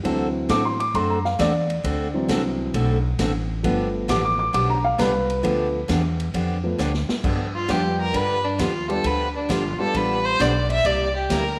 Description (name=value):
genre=country, western swing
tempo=133 BPM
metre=4/4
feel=swing 67% on 8ths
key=G mixolydian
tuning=A4 = 441 Hz
part: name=dark upright piano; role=accompaniment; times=0.0-10.4 s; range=E3 to D6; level=-26 LUFS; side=equal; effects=none
part: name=picked steel-string acoustic guitar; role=accompaniment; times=0.0-11.4 s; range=C3 to A4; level=-30 LUFS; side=equal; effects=none
part: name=upright bass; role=bass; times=0.0-11.6 s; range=G1 to A2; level=-28 LUFS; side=equal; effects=none
part: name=swinging big-band drum kit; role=drums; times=0.0-11.4 s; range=crash cymbal, hi-hat, kick drum, ride cymbal, snare drum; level=-33 LUFS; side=equal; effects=none
part: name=clear fiddle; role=second line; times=7.5-11.6 s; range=D4 to E5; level=-25 LUFS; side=equal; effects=none
room=moderate echo chamber reverb, RT60 1.5 s, small room ambience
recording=none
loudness=-22 LUFS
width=mono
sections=0.0-7.2 A section; 7.2-11.6 A section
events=upright piano solo 0.0-7.2; drum fill 6.8-7.2; fiddle solo 7.2-11.6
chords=0.0 D7; 3.6 G7; 10.8 C7